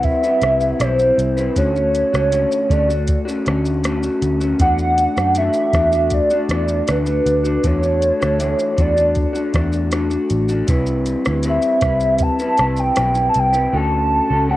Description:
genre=indie pop, bedroom pop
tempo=79 BPM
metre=4/4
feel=straight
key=unclear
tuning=A4 = 440 Hz
part: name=warbly nostalgic lead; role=melody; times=0.0-14.6 s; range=B4 to A5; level=-18 LUFS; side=right 1 dB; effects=analog chorus, cassette tape, plate reverb, analog delay
part: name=electric guitar through a small old amp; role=accompaniment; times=0.0-14.6 s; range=C3 to B4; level=-21 LUFS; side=left 2 dB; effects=lush chorus, vibrato effect
part: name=vintage muted picked electric bass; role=bass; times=0.0-14.6 s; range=A1 to F#2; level=-21 LUFS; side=equal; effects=none
part: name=soft vintage rhythm box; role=drums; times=0.0-13.7 s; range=hi-hat, kick drum, rim click, shaker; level=-22 LUFS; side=equal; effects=cassette tape
room=moderate studio reverb, RT60 0.6 s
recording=home recording on cassette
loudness=-15 LUFS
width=side -15 dB against mid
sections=0.0-14.6 A section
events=none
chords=0.0 Cmaj7; 1.6 Dmaj7; 4.6 E9sus4; 10.7 Cmaj7; 13.7 Dmaj7

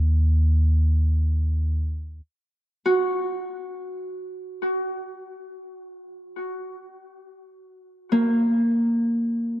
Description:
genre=ambient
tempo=free time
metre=none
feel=none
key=unclear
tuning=A4 = 439 Hz
part: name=round analog bass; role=bass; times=0.0-2.2 s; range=Eb2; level=-19 LUFS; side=equal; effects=none
part: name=Celtic harp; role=arpeggios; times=2.9-9.6 s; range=Bb3 to Gb4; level=-23 LUFS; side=equal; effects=analog delay
room=moderate spring reverb, RT60 2.5 s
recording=echo-heavy mix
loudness=-20 LUFS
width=side -13 dB against mid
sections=0.0-2.3 A section; 2.3-9.6 B section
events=none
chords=none

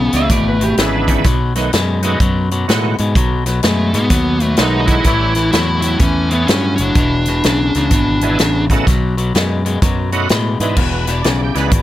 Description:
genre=electric blues shuffle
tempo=126 BPM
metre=4/4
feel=swing 64% on 8ths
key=E mixolydian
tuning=A4 = 440 Hz
part: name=dark smooth lead guitar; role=melody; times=0.0-0.7, 3.6-8.6 s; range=A3 to E4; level=-17 LUFS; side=right 1 dB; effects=overdrive
part: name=electric guitar at the edge of break-up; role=riff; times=0.0-11.8 s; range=E2 to G#3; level=-19 LUFS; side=left 4 dB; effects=none
part: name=fingered electric bass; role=bass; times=0.0-11.8 s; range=E1 to A2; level=-18 LUFS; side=equal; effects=none
part: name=natural country drum kit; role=drums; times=0.1-11.8 s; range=crash cymbal, hi-hat, kick drum, snare drum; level=-17 LUFS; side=equal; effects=none
part: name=electric slide guitar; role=second line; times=0.2-1.3 s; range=D4 to E5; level=-21 LUFS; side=right 3 dB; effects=none
part: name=bright tonewheel organ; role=accompaniment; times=0.8-5.3, 8.2-11.8 s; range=D#3 to D5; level=-20 LUFS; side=right 5 dB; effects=overdrive, chorus vibrato, slow rotary speaker
room=little or no reverb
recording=none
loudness=-12 LUFS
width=side -14 dB against mid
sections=0.0-10.8 A section; 10.8-11.8 B section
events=none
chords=0.0 E7; 1.3 B7; 5.1 A7; 7.0 E7; 8.9 B7; 10.8 E7

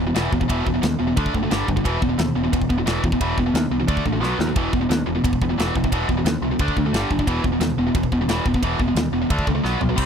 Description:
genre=heavy metal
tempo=177 BPM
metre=4/4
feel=straight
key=E minor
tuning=A4 = 438 Hz
part: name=tight distorted guitar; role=riff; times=0.0-10.1 s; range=E2 to D4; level=-21 LUFS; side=equal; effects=distortion
part: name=growling picked electric bass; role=bass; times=0.0-10.1 s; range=E1 to D#2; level=-25 LUFS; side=equal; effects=overdrive
part: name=tight metal drum kit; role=drums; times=0.2-10.1 s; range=crash cymbal, kick drum, ride cymbal, snare drum, toms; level=-24 LUFS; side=equal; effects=none
room=little or no reverb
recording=dry, close 1970s-style studio recording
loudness=-18 LUFS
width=side -7 dB against mid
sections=0.0-10.0 A section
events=drum fill 4.2-4.6, 9.6-10.0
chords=0.0 E5; 1.2 D5; 1.5 G5; 1.8 E5; 3.9 D5; 4.2 B5; 4.6 E5; 6.6 D5; 6.9 G5; 7.3 E5; 9.3 D5; 9.6 B5

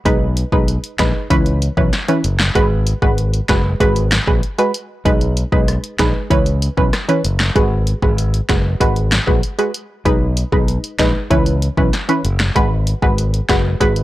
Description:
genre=dancehall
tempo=96 BPM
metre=4/4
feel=straight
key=G# minor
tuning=A4 = 440 Hz
part: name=punchy chord stab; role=accompaniment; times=0.1-14.0 s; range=E3 to B4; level=-18 LUFS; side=right 1 dB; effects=chorus
part: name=modern bright fingered electric bass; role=bass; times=0.1-14.0 s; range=F#1 to C#2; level=-18 LUFS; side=equal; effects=none
part: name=deep house drum kit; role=drums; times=0.1-14.0 s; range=finger snaps, hi-hat, kick drum, rim click, snare drum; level=-18 LUFS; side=equal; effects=none
room=little or no reverb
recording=dry, gritty hardware recording, transformer saturation, cassette tape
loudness=-14 LUFS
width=side -15 dB against mid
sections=0.0-14.0 A section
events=none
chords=0.1 B6; 1.3 C#m7; 2.6 G#m7; 5.1 B6; 6.3 C#m7; 7.6 G#m7; 10.1 B6; 11.3 C#m7; 12.6 G#m7

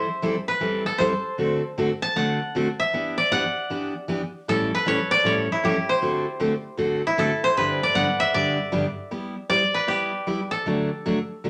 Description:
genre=country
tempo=155 BPM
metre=4/4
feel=swing 66% on 8ths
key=G major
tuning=A4 = 439 Hz
part: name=koto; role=melody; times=0.0-11.5 s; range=E4 to A5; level=-25 LUFS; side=equal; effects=none
part: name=picked steel-string acoustic guitar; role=accompaniment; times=0.0-11.5 s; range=G2 to A4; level=-27 LUFS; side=equal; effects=none
room=wet studio ambience, RT60 0.5 s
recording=none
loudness=-23 LUFS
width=mono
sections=0.0-9.1 A section; 9.1-11.5 B section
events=koto solo 0.0-9.1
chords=0.0 Am7/E; 1.4 D7; 2.9 Em7; 4.5 A7; 6.0 D7; 7.6 G; 9.1 G6; 10.7 D

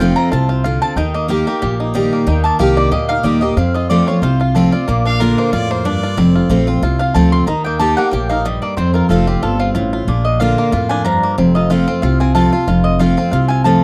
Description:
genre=bluegrass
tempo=185 BPM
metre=4/4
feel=swing 54% on 8ths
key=F mixolydian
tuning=A4 = 439 Hz
part: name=picked steel-string acoustic guitar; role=accompaniment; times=0.0-13.8 s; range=F2 to G4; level=-18 LUFS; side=equal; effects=none
part: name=bluegrass banjo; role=arpeggios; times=0.0-13.8 s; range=F3 to G4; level=-24 LUFS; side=equal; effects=none
part: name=mandolin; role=stabs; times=0.0-13.8 s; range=F4 to C6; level=-22 LUFS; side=equal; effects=none
part: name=upright bass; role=bass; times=0.0-13.8 s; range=F1 to F2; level=-20 LUFS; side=equal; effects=none
part: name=clear fiddle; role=second line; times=5.1-6.5 s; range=Bb4 to F5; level=-26 LUFS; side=equal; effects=none
room=small room ambience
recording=dry, close 1970s-style studio recording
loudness=-15 LUFS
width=mono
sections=0.0-13.8 A section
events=mandolin solo 0.0-13.8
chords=0.0 F; 1.0 Eb; 3.6 F; 4.9 Bb; 6.2 F; 7.5 Eb; 8.8 F; 10.1 Bb; 11.4 F

